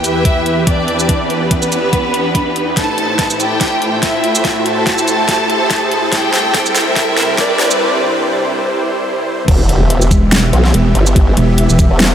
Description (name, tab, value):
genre	heavy wobble dubstep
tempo	143 BPM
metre	4/4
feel	swing 54% on 16ths, half-time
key	E minor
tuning	A4 = 440 Hz
part	clear symphonic violin section	melody	0.0-7.8 s	B3 to A5	-17 LUFS	equal	diffuse ambient delay
part	supersaw chords	sustained chords	0.0-12.1 s	E2 to E5	-18 LUFS	equal	sidechain pumping
part	dubstep drum kit	drums	0.0-12.1 s	crash cymbal, hi-hat, shaker, snare drum	-18 LUFS	equal	overdrive, high-pass filter on hats, high-pass filter on perc, high-pass filter on snare, high-pass filter on cymbals
part	riser and impact	sound effects	0.0-11.2 s	none	-21 LUFS	equal	none
part	electronic kick drum	drums	0.2-11.9 s	none	-14 LUFS	equal	overdrive
part	formant-sweep wobble bass	bass	9.5-12.1 s	E1 to B1	-12 LUFS	equal	chorus, overdrive
part	pulsing pluck wobble bass	bass	10.1-11.9 s	E1	-12 LUFS	equal	distortion, chorus, overdrive
room	wet huge ambient reverb, RT60 7.9 s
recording	dreamy mix soaked in reverb, high-pass filter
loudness	-11 LUFS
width	side -9 dB against mid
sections	0.0-9.5 A section; 9.5-12.1 B section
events	build-up 0.0-9.5; riser 0.0-7.8; drum fill 2.8-7.8; break 7.8-9.5; drop 9.5-12.1; impact 9.5-11.2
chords	0.0 Em; 2.8 Am; 6.1 C; 9.5 Em